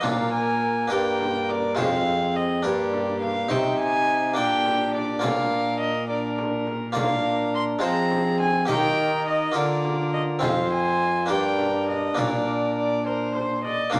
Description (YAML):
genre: classical, renaissance-style consort dance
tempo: 69 BPM (dotted quarters)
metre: 6/8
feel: straight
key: unclear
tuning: A4 = 440 Hz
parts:
  - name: rich violin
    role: melody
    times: 0.0-14.0 s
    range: C5 to C6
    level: -28 LUFS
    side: equal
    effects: none
  - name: warm viola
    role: second line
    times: 0.0-14.0 s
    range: G4 to D5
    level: -34 LUFS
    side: equal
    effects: none
  - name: clear trombone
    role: accompaniment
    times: 0.0-14.0 s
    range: Bb3 to F4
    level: -30 LUFS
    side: equal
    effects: none
  - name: harpsichord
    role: accompaniment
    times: 0.0-14.0 s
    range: F2 to Eb5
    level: -31 LUFS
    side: equal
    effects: none
  - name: dark cello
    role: bass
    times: 0.0-14.0 s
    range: F2 to F3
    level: -34 LUFS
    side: equal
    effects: none
  - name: frame drum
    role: percussion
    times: 0.0-14.0 s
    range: none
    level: -35 LUFS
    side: equal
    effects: none
room: moderate studio reverb, RT60 0.8 s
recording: none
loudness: -24 LUFS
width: mono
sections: 0.0-13.9 A section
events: none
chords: 0.0 Bb; 0.9 Gm; 1.8 Fm; 2.6 Gm; 3.5 Cm; 4.4 Gm/Bb; 5.2 Bb; 7.8 Fm; 8.7 Eb; 9.6 Bb/D; 10.4 Fm; 11.3 Gm; 12.2 Bb